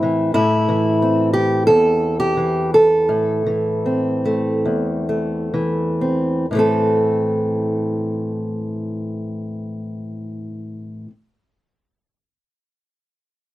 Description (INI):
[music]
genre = folk, solo fingerstyle acoustic guitar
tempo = 58-92 BPM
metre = 4/4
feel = straight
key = A minor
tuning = A4 = 436 Hz
[part]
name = fingerpicked acoustic archtop guitar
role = solo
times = 0.0-11.1 s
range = E2 to A4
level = -17 LUFS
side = equal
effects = none
[sound]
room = light reverb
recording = dark, warm production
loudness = -16 LUFS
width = side -15 dB against mid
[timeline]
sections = 0.3-6.5 A section; 6.5-10.6 B section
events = slowing down 0.3-6.5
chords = 0.3 Am